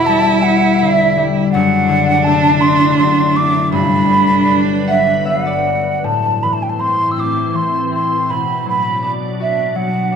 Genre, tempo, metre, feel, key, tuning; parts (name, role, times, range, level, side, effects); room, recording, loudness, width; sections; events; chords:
celtic folk, Celtic slow air; 81 BPM; 3/4; rubato; A dorian; A4 = 440 Hz
breathy mellow wooden flute; melody; 0.0-10.2 s; E5 to E6; -16 LUFS; right 1 dB
warm cello; second line; 0.0-5.6 s; D4 to E4; -17 LUFS; right 6 dB
concert harp; accompaniment; 0.0-10.2 s; E1 to F#5; -17 LUFS; left 6 dB
soft additive organ-like pad; sustained chords; 2.2-10.2 s; F#2 to B4; -24 LUFS; right 1 dB; ensemble chorus, built-in reverb
moderate recital hall reverb, RT60 1.3 s; -12 LUFS; side -7 dB against mid
0.0-6.0 A section; 6.0-10.2 B section
harp fill 4.5-6.0
0.0 Em7; 1.5 D7/F#; 3.7 Gmaj7; 6.0 Am; 8.3 Bm